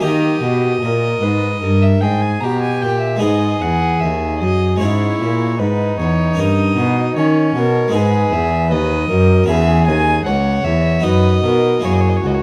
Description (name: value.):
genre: classical, baroque-style sonata movement with continuo.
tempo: 76 BPM.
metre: 4/4.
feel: straight.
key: G# minor.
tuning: A4 = 440 Hz.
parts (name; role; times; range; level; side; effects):
rich violin; melody; 0.0-12.4 s; B4 to A#5; -25 LUFS; equal; none.
warm violin; second line; 0.0-12.4 s; C#4 to C#5; -23 LUFS; equal; none.
harpsichord; accompaniment; 0.0-12.4 s; C#2 to A#4; -22 LUFS; equal; none.
warm cello; bass; 0.0-12.4 s; C#2 to D#3; -19 LUFS; equal; none.
room: moderate stone room reverb, RT60 1.2 s.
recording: dark, warm production.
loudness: -16 LUFS.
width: mono.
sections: 0.0-12.4 A section.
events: none.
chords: 0.0 D#; 3.2 G#m; 4.8 C#m/G#; 6.4 D#7/G; 7.9 G#m; 9.5 C#m7; 11.1 B/F#; 11.9 F#7.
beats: | 0.04 0.83 1.63 2.44 | 3.24 4.03 4.82 5.61 | 6.39 7.17 7.94 8.71 | 9.49 10.27 11.05 11.85.